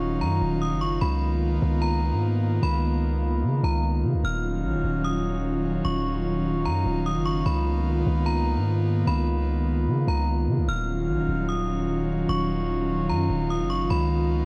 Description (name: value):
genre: hip hop, atmospheric cloud-rap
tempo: 149 BPM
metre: 4/4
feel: half-time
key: Eb minor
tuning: A4 = 438 Hz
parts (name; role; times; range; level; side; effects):
- metallic FM bell; melody; 0.0-14.5 s; Bb5 to F6; -34 LUFS; equal; chorus, tape echo
- airy breathy pad; sustained chords; 0.0-14.5 s; Eb3 to F4; -29 LUFS; equal; chorus, plate reverb
- long sustained 808-style bass; bass; 0.0-14.5 s; Eb1 to Db3; -28 LUFS; equal; none
room: light reverb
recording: worn, warbling old tape, cassette tape, warbly pitch drift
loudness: -25 LUFS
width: mono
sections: 0.0-14.5 A section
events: none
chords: 0.0 Ebm9; 1.0 Db13; 4.2 Ebm9; 7.5 Db13; 10.7 Ebm9; 13.9 Db13